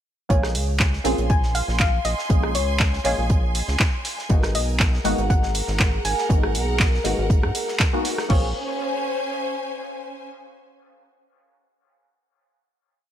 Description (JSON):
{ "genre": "deep house", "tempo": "120 BPM", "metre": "4/4", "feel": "swing 54% on 16ths", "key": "Bb minor", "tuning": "A4 = 439 Hz", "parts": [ { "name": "soft round pluck", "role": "melody", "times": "0.3-8.5 s", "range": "Db5 to Db6", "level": "-29 LUFS", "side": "left 2 dB", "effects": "lush chorus, ping-pong delay" }, { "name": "filtered dub chord stab", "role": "stabs", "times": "0.3-8.5 s", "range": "Ab3 to Ab4", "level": "-28 LUFS", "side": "equal", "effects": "phaser, sidechain pumping, dub echo" }, { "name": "rubbery square bass", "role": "bass", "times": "0.3-8.5 s", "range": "Ab1 to Ab2", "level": "-25 LUFS", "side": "equal", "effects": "none" }, { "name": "electronic kick drum", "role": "drums", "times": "0.3-8.4 s", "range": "none", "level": "-20 LUFS", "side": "equal", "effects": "none" }, { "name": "tight metal drum kit", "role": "drums", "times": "0.3-8.3 s", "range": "hi-hat, snare drum", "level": "-36 LUFS", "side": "right 3 dB", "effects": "high-pass filter on hats, high-pass filter on snare, high-pass filter on room" }, { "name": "punchy analog drum machine", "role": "drums", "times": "0.4-8.4 s", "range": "crash cymbal, handclaps, hi-hat, rim click", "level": "-26 LUFS", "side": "right 1 dB", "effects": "none" }, { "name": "clear symphonic string section", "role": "texture", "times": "0.8-10.3 s", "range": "Db4 to C6", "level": "-30 LUFS", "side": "equal", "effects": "sidechain pumping" }, { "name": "dark analog pad", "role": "sustained chords", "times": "5.0-8.5 s", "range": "Ab4 to Gb5", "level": "-32 LUFS", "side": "equal", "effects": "chorus, vintage 12-bit sampler grit, sidechain pumping" } ], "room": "light reverb, small room ambience", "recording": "none", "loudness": "-19 LUFS", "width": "side -10 dB against mid", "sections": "0.3-8.3 groove; 8.3-10.3 final chord", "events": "none", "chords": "0.3 Bbm9; 4.3 Abm9; 8.3 Bbm9" }